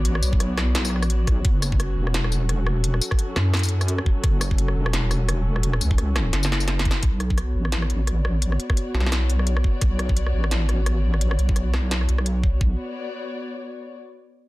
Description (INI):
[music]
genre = half-time drum and bass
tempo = 172 BPM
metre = 4/4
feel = swing 57% on 16ths, half-time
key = B minor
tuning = A4 = 440 Hz
[part]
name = dark studio string section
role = sustained chords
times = 0.0-14.0 s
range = F#3 to D5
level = -32 LUFS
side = left 1 dB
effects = sidechain pumping
[part]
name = deep soft wobble bass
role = bass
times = 0.0-12.8 s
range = E1 to F#2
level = -22 LUFS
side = equal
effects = chorus
[part]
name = industrial drum kit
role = drums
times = 0.1-12.3 s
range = hi-hat, rim click, snare drum, tambourine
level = -28 LUFS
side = left 1 dB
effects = none
[part]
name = electronic kick drum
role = drums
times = 0.3-12.7 s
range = none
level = -21 LUFS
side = equal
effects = none
[sound]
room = digital ambience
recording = dense, heavily limited modern master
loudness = -20 LUFS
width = side -19 dB against mid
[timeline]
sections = 0.0-7.0 A section; 7.0-12.6 B section; 12.6-14.0 C section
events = drop 0.0-7.0; drum fill 6.3-7.0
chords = 0.0 Bm; 1.4 F#m; 7.0 Bm